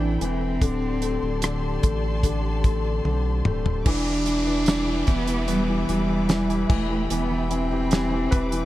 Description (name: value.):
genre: pop ballad.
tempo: 74 BPM.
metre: 4/4.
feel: straight.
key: E minor.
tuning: A4 = 438 Hz.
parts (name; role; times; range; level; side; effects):
dark cello; melody; 0.0-8.7 s; G3 to D4; -26 LUFS; right 1 dB; none.
clear concert grand piano; accompaniment; 0.0-8.7 s; D3 to B4; -29 LUFS; left 5 dB; none.
dark studio string section; sustained chords; 0.0-8.7 s; G4 to D6; -34 LUFS; left 2 dB; none.
picked steel-string acoustic guitar; arpeggios; 0.0-8.7 s; D3 to B4; -34 LUFS; right 6 dB; none.
saturated sub bass; bass; 0.0-8.7 s; D1 to B1; -27 LUFS; equal; none.
damped 70s drum kit; drums; 0.2-8.7 s; crash cymbal, hi-hat, kick drum, rim click, snare drum, toms; -24 LUFS; equal; none.
downlifter; sound effects; 3.9-8.7 s; none; -35 LUFS; equal; none.
room: studio reverb.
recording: dark, warm production.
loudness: -21 LUFS.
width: side -15 dB against mid.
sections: 0.0-3.9 A section; 3.9-8.7 B section.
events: drum fill 3.0-3.9.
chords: 0.0 Amadd9; 0.6 D7sus4; 3.9 Em7.